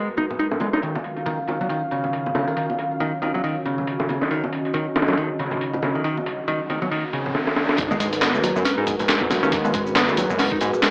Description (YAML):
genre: breakbeat, breaks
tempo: 138 BPM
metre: 4/4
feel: swing 57% on 16ths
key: G# minor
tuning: A4 = 439 Hz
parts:
  - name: dark analog pad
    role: sustained chords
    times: 0.0-10.9 s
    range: D#3 to E#5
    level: -29 LUFS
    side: equal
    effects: chorus, sidechain pumping
  - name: modern bright picked electric bass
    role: riff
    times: 0.0-10.9 s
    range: C#3 to D#4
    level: -28 LUFS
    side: equal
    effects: tube saturation, tape echo
  - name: breakbeat sampler-style drum kit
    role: drums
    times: 0.2-10.9 s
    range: hi-hat, kick drum, snare drum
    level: -27 LUFS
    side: equal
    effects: low-pass filter on hats, low-pass filter on snare, low-pass filter on kick, low-pass filter on room, tape echo
  - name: bongos and congas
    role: percussion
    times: 0.2-10.8 s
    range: none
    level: -34 LUFS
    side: equal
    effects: none
  - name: riser and sub drop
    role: sound effects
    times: 6.3-9.5 s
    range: none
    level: -34 LUFS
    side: equal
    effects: none
  - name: fat analog bass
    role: bass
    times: 7.8-10.7 s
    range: F#1 to G#2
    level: -28 LUFS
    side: equal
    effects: none
  - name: electronic shaker and handclaps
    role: drums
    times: 7.8-10.9 s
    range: none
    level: -30 LUFS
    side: equal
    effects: tape echo
room: moderate plate reverb, RT60 1.7 s, digital ambience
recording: echo-heavy mix, AM radio sound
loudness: -23 LUFS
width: mono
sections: 0.0-7.8 A section; 7.8-10.9 B section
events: riser 6.3-7.8; drum fill 7.4-7.8; drop 7.8-10.9; impact 7.8-9.5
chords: 0.0 G#m9; 0.8 D#m9; 7.8 G#m9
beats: 0.40 | 0.83 1.26 1.70 2.13 | 2.57 3.00 3.44 3.87 | 4.31 4.74 5.18 5.61 | 6.05 6.48 6.92 7.35 | 7.79 8.22 8.66 9.09 | 9.53 9.96 10.39 10.83